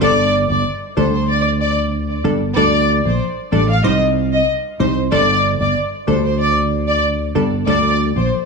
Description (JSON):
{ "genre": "dancehall", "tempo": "94 BPM", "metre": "4/4", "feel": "straight", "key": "unclear", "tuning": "A4 = 440 Hz", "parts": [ { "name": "warm studio violin section", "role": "melody", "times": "0.0-8.3 s", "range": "C5 to F5", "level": "-18 LUFS", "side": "left 1 dB", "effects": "tape echo" }, { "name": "wavetable chord stab", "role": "accompaniment", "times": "0.0-8.3 s", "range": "G3 to C5", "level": "-21 LUFS", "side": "left 1 dB", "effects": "none" }, { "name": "sustaining fretless electric bass", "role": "bass", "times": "0.0-8.3 s", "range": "G1 to D2", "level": "-18 LUFS", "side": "right 1 dB", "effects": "none" } ], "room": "light reverb, studio ambience", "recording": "studio reverb", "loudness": "-14 LUFS", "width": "side -4 dB against mid", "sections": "0.0-8.5 A section", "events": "none", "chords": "0.0 Gsus2; 2.6 Dsus4; 3.8 Cm; 5.1 Gsus2; 7.7 Dsus4" }